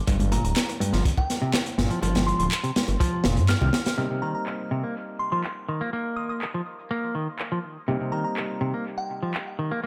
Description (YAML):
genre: breakbeat, breaks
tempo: 123 BPM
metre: 4/4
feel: straight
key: C minor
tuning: A4 = 440 Hz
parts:
  - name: semi-hollow electric guitar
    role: riff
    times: 0.1-9.9 s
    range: G2 to Bb3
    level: -31 LUFS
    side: equal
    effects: low-pass filter, dub echo
  - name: detuned saw bass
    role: bass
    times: 0.1-3.7 s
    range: D1 to G2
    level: -26 LUFS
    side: equal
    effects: none
  - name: crunchy breakbeat drum kit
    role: drums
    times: 0.1-4.0 s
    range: hi-hat, kick drum, snare drum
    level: -28 LUFS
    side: equal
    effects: none
  - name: congas and bongos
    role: percussion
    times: 0.2-3.8 s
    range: none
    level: -36 LUFS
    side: equal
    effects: none
  - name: glassy synth bell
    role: melody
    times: 0.3-9.1 s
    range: G5 to F6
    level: -36 LUFS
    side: equal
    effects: chorus, small speaker sound, dub echo
  - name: electronic handclaps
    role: drums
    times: 0.6-9.4 s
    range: none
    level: -35 LUFS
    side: equal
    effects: overdrive, low-pass filter on snare, dub echo
  - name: clear concert grand piano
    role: stabs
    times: 4.0-9.9 s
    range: G3 to Eb4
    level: -37 LUFS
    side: equal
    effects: low-pass filter, dub echo
room: moderate spring reverb, RT60 1.2 s, small room ambience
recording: echo-heavy mix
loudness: -26 LUFS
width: mono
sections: 0.0-4.0 A section; 4.0-9.9 B section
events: filter sweep on clean electric guitar 0.0-4.0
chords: 0.0 G7(no3); 4.0 Cm7